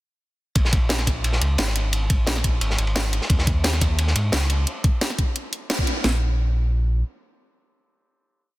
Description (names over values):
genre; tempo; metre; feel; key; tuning
liquid drum and bass; 175 BPM; 4/4; straight; Bb minor; A4 = 440 Hz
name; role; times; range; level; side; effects
sub bass with octave; bass; 0.6-7.0 s; Ab1 to Ab2; -22 LUFS; equal; none
crunchy breakbeat drum kit; drums; 0.6-4.6 s; ride cymbal, snare drum; -28 LUFS; equal; high-pass filter on cymbals, high-pass filter on snare, high-pass filter on room
drum and bass drum kit; drums; 0.6-6.1 s; kick drum, snare drum; -21 LUFS; equal; none
drum and bass drum kit; drums; 0.6-5.9 s; hi-hat, snare drum; -26 LUFS; equal; none
room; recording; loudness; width
light reverb, studio reverb; dense, heavily limited modern master; -19 LUFS; side -18 dB against mid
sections
0.6-6.0 drop; 6.0-8.6 final note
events
drop 0.6-6.0; band accent 5.7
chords
none